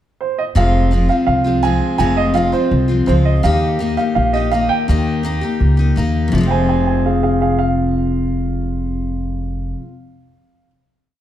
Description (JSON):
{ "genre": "honky-tonk and classic country", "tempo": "166 BPM", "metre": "4/4", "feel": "straight", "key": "F minor", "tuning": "A4 = 440 Hz", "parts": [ { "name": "dark upright piano", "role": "second line", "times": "0.2-10.7 s", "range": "Ab4 to Ab5", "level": "-20 LUFS", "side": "right 4 dB", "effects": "none" }, { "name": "picked steel-string acoustic guitar", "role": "accompaniment", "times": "0.5-9.9 s", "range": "F2 to G4", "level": "-18 LUFS", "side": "left 3 dB", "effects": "none" }, { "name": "upright bass", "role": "bass", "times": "0.6-9.7 s", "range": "F1 to Eb2", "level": "-18 LUFS", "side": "equal", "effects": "none" } ], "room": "moderate recital hall reverb, RT60 1.5 s", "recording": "dark, warm production", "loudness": "-14 LUFS", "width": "side -11 dB against mid", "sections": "0.0-0.6 pickup bar; 0.6-6.3 interlude; 6.3-9.2 final chord", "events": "upright piano solo 0.6-6.3", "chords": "0.0 N.C.; 0.6 Fm; 3.4 Eb; 6.3 Fm", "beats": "0.20 | 0.56 0.92 1.27 1.64 | 2.00 2.36 2.72 3.08 | 3.44 3.80 4.16 4.52 | 4.88 5.24 5.61 5.97 | 6.33 6.69 7.05 7.41 | 7.77 8.13 8.49 8.85" }